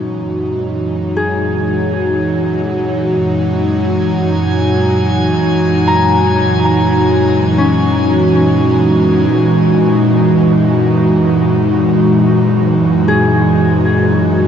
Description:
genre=ambient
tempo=free time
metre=none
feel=none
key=F# mixolydian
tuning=A4 = 441 Hz
part: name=airy breathy pad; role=sustained chords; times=0.0-14.5 s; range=A#2 to F#4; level=-12 LUFS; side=equal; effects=chorus, shimmer reverb
part: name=Celtic harp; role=arpeggios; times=0.0-14.5 s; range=C#4 to A#5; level=-20 LUFS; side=left 3 dB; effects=analog delay, shimmer reverb
part: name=warm symphonic double bass section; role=bass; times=0.0-14.5 s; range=F#2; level=-22 LUFS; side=equal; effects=none
part: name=analog drone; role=drone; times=0.0-14.5 s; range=F#3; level=-21 LUFS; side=equal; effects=chorus
part: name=drifting glass-harmonics texture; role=texture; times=3.7-9.4 s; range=G#5 to G#6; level=-25 LUFS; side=left 2 dB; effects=chorus, built-in reverb, shimmer reverb
room=moderate huge ambient reverb, RT60 8.3 s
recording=dreamy mix soaked in reverb, nothing above 7.7 kHz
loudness=-11 LUFS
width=side -8 dB against mid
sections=0.0-9.3 A section; 9.3-14.5 B section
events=fade-in on analog synth pad 0.0-9.3; fade-in on double bass section 0.0-9.3, 9.3-14.5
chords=0.0 F#13

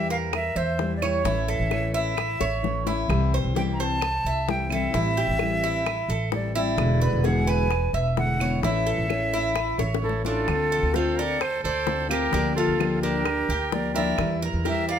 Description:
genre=latin, Cuban son and guajira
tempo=130 BPM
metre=4/4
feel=straight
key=D minor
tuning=A4 = 443 Hz
part: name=breathy silver concert flute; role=melody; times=0.0-15.0 s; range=A4 to Bb5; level=-28 LUFS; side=right 1 dB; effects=none
part: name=fingerpicked steel-string acoustic guitar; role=accompaniment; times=0.0-15.0 s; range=B2 to G4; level=-28 LUFS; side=left 4 dB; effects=none
part: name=Cuban tres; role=arpeggios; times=0.0-15.0 s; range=D4 to E5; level=-29 LUFS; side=right 1 dB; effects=none
part: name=upright bass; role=bass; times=0.0-15.0 s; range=E1 to E2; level=-27 LUFS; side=right 1 dB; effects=none
part: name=bongos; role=percussion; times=0.3-14.9 s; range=none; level=-33 LUFS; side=left 10 dB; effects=none
part: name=claves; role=percussion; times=0.3-14.4 s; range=none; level=-36 LUFS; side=right 10 dB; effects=none
part: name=bright trumpet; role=second line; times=10.0-15.0 s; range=E4 to D5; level=-32 LUFS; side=right 8 dB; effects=none
room=moderate large studio reverb, RT60 1.2 s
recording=none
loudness=-22 LUFS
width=side -8 dB against mid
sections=0.0-10.5 A section; 10.5-15.0 A section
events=drum fill 2.4-3.1, 9.8-10.5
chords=0.0 Edim; 1.2 A; 3.1 C; 4.9 Am7; 6.8 E7; 8.6 A; 10.5 Dm7; 12.3 Gm7/D; 14.2 Edim

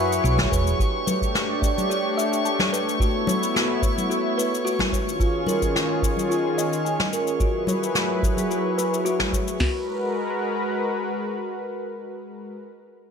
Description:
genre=sunset chillout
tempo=109 BPM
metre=4/4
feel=swing 53% on 16ths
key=G# minor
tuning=A4 = 440 Hz
part: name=mellow FM electric piano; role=accompaniment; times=0.0-0.8 s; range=F#3 to F#5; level=-35 LUFS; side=left 2 dB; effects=none
part: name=lush unison pad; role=sustained chords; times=0.0-12.6 s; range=D#3 to B4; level=-26 LUFS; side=left 1 dB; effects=chorus
part: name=buzzing kalimba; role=arpeggios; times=0.0-9.9 s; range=E#4 to A5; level=-28 LUFS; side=equal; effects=low-pass filter, digital delay
part: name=hollow-body short-scale fingered electric bass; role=bass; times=0.0-0.7 s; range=E1 to F#2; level=-23 LUFS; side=equal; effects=none
part: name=drifting glass-harmonics texture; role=texture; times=0.0-9.6 s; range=C#5 to C#6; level=-30 LUFS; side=right 2 dB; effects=chorus, built-in reverb
part: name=cabasa and snare drum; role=drums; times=0.1-9.6 s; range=none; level=-27 LUFS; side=left 2 dB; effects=none
part: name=soft vintage rhythm box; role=drums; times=0.4-9.7 s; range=hi-hat, kick drum, snare drum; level=-24 LUFS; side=equal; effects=none
part: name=congas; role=percussion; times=0.4-9.3 s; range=none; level=-29 LUFS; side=left 2 dB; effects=none
room=moderate plate reverb, RT60 1.2 s, small room reverb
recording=none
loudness=-21 LUFS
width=side -6 dB against mid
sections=0.0-9.6 A section; 9.6-11.8 B section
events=filter sweep on kalimba 0.0-9.6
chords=0.0 F#9sus4; 0.8 A9sus4; 3.0 B9sus4; 4.9 D#9sus4; 7.4 F#9sus4; 9.6 G#m9

